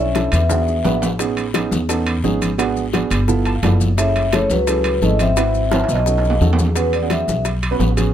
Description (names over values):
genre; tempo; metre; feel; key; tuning
Afro-Cuban jazz; 173 BPM; 4/4; straight; unclear; A4 = 440 Hz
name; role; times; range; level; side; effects
vibraphone with medium mallets; melody; 0.0-1.0, 4.0-7.4 s; B4 to E5; -20 LUFS; equal; none
breathy trombone; second line; 0.0-1.0, 4.0-6.4 s; F#3 to C#4; -26 LUFS; left 4 dB; none
warm upright piano; accompaniment; 0.0-8.1 s; B3 to A5; -22 LUFS; right 5 dB; none
upright bass; bass; 0.0-8.1 s; F#1 to E2; -19 LUFS; equal; none
timbales; percussion; 0.1-8.1 s; none; -26 LUFS; right 4 dB; none
bongos; percussion; 0.2-8.1 s; none; -26 LUFS; left 9 dB; none
congas; percussion; 0.2-8.1 s; none; -25 LUFS; left 2 dB; none
guiro; percussion; 0.2-8.1 s; none; -36 LUFS; left 6 dB; none
maracas; percussion; 0.2-8.1 s; none; -33 LUFS; left 8 dB; none
room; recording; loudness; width
little or no reverb; close, detailed microphones; -15 LUFS; side -10 dB against mid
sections
0.0-6.8 A section; 6.8-8.1 B section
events
drum fill 0.5-1.2, 5.7-6.8; upright piano fill 3.3-4.0; vibraphone solo 6.8-8.1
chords
0.0 Bm11; 0.5 E7; 1.2 Amaj9#11; 2.6 G#m7b5; 3.3 G13; 4.0 F#m7; 5.4 G#7alt; 6.1 B7; 6.8 E6